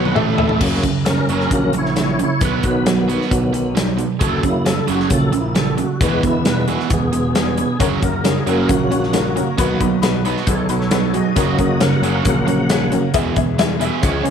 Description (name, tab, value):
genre	classic rock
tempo	134 BPM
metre	4/4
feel	straight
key	F# major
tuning	A4 = 440 Hz
part	tack piano	accompaniment	0.0-0.6, 7.8-14.3 s	B3 to E5	-23 LUFS	left 13 dB	none
part	tonewheel organ	sustained chords	0.0-14.3 s	C#3 to F#5	-21 LUFS	left 1 dB	slow rotary speaker, overdrive, chorus vibrato
part	biting overdriven guitar	riff	0.0-14.3 s	E2 to C#4	-21 LUFS	right 9 dB	none
part	fuzz picked electric bass	bass	0.0-14.3 s	E1 to C#2	-23 LUFS	left 1 dB	overdrive
part	big rock drum kit	drums	0.1-14.3 s	crash cymbal, hi-hat, kick drum, snare drum, toms	-21 LUFS	left 2 dB	none
room	moderate echo chamber reverb, RT60 1.6 s, small room ambience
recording	1960s-style stereo with parts hard left and right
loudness	-15 LUFS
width	side -7 dB against mid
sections	0.6-14.3 A section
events	drum fill 0.0-0.6; tonewheel organ solo 0.6-14.3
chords	0.2 A5; 0.6 F#; 2.4 B; 4.2 F#; 6.0 E; 7.8 F#; 9.6 B; 11.4 F#; 13.1 E